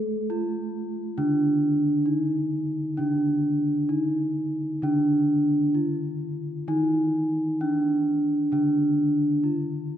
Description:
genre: gamelan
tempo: 65 BPM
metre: 4/4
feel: straight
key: unclear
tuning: A4 = 440 Hz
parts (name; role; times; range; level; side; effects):
- gamelan-type bronze metallophone; melody; 0.0-10.0 s; D4 to A4-30c; -23 LUFS; right 1 dB; none
- gamelan-type bronze metallophone; accompaniment; 0.0-10.0 s; D3 to A3-30c; -31 LUFS; left 1 dB; none
room: wet concert hall reverb, RT60 2.2 s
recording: none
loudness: -22 LUFS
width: side -10 dB against mid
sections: 0.0-3.0 A section; 3.0-10.0 B section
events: none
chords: none

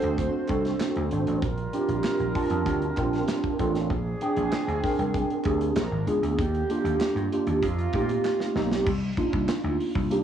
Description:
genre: polished 1980s jazz-funk pop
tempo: 97 BPM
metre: 4/4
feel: straight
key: Bb major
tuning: A4 = 440 Hz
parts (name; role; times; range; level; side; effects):
- mellow horn section; second line; 0.0-8.5 s; C3 to C5; -33 LUFS; right 3 dB; cassette tape
- mellow tine electric piano; accompaniment; 0.0-10.2 s; A3 to A5; -26 LUFS; right 1 dB; ensemble chorus, cassette tape
- vintage slap bass; bass; 0.0-10.2 s; Ab1 to Bb2; -29 LUFS; right 1 dB; none
- modern studio drum kit; drums; 0.0-10.2 s; crash cymbal, hi-hat, kick drum, snare drum; -32 LUFS; equal; cassette tape
- group handclap; percussion; 0.5-9.6 s; none; -46 LUFS; right 4 dB; none
room: light reverb, small room ambience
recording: home recording on cassette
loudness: -24 LUFS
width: side -9 dB against mid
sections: 0.0-8.9 A section; 8.9-10.2 B section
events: drum fill 8.2-8.9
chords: 0.0 D7; 1.4 Bb69; 3.9 Bb13; 5.8 Bb7b9; 6.4 Ebmaj9; 7.6 F7sus4; 8.9 Cm11

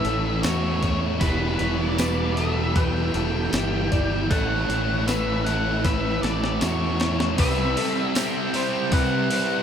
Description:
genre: rock, shoegaze and dream pop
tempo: 78 BPM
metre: 4/4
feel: straight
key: unclear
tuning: A4 = 441 Hz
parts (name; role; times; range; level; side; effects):
- octave-fuzz lead guitar; melody; 0.0-9.6 s; B4 to G5; -29 LUFS; equal; distortion, diffuse ambient delay
- electric guitar through a small old amp; arpeggios; 0.0-9.6 s; F#4 to D5; -31 LUFS; left 2 dB; analog chorus, diffuse ambient delay
- biting overdriven guitar; riff; 0.0-9.6 s; A2 to E4; -29 LUFS; left 9 dB; lush chorus
- biting overdriven guitar; riff; 0.0-9.6 s; A2 to E4; -28 LUFS; right 8 dB; reverse reverb
- distorted electric guitar; riff; 0.0-9.6 s; E2 to C4; -30 LUFS; equal; distortion
- clean 12-bit digital drum machine; drums; 0.0-9.5 s; hi-hat, kick drum, snare drum; -26 LUFS; equal; none
- growling fingered electric bass; bass; 0.1-9.3 s; E1 to C3; -27 LUFS; equal; overdrive
- tambourine; percussion; 0.4-8.3 s; none; -38 LUFS; right 11 dB; none
room: moderate plate reverb, RT60 2.2 s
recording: dreamy mix soaked in reverb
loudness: -20 LUFS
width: side -8 dB against mid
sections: 0.0-7.4 A section; 7.4-9.6 B section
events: drum fill 5.8-7.4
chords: 0.0 A; 1.2 Em; 4.3 A6; 7.4 Cmaj7

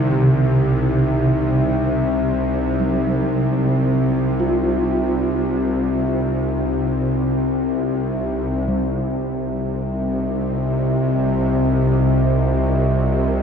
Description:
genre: dark ambient drone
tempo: free time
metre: none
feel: none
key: unclear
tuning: A4 = 441 Hz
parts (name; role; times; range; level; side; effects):
- gamelan-type bronze metallophone; arpeggios; 0.0-10.8 s; C3 to F4; -23 LUFS; right 2 dB; diffuse ambient delay
- bowed-like drone; drone; 0.0-13.4 s; C2 to C3; -18 LUFS; equal; built-in reverb
- bronze singing bowl; texture; 0.0-13.4 s; G3 to Eb4; -30 LUFS; left 2 dB; none
- dark analog pad; sustained chords; 9.8-13.4 s; C4 to Eb5; -30 LUFS; right 1 dB; none
room: wet cathedral reverb, RT60 6.5 s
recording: dark, warm production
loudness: -17 LUFS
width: side -7 dB against mid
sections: 0.0-8.7 A section; 8.7-13.4 B section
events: none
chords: 0.0 Cm

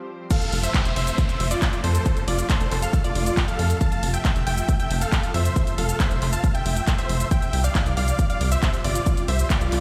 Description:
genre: uplifting trance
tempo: 137 BPM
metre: 4/4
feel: straight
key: F major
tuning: A4 = 441 Hz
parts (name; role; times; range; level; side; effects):
- lush unison pad; sustained chords; 0.0-9.8 s; C3 to C5; -36 LUFS; equal; chorus, phaser, sidechain pumping
- big supersaw lead; melody; 0.3-9.8 s; F4 to A5; -30 LUFS; equal; sidechain pumping, dub echo
- analog pluck; second line; 0.3-9.8 s; C5 to A5; -37 LUFS; equal; chorus, sidechain pumping, dub echo
- electronic kick drum; drums; 0.3-9.6 s; none; -24 LUFS; equal; none
- punchy analog drum machine; drums; 0.3-9.8 s; crash cymbal, handclaps, hi-hat, shaker; -32 LUFS; equal; none
- downlifter; sound effects; 0.3-3.8 s; none; -38 LUFS; equal; none
- tight sequencer bass; bass; 0.5-9.8 s; F1 to F2; -25 LUFS; equal; tube saturation, sidechain pumping
room: light reverb, digital ambience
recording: played on a big sound system in a bare room, stone room reverb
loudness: -22 LUFS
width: mono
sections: 0.3-9.8 A section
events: break 0.0-0.3; drop 0.3-9.8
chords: 0.3 F; 7.3 Csus4

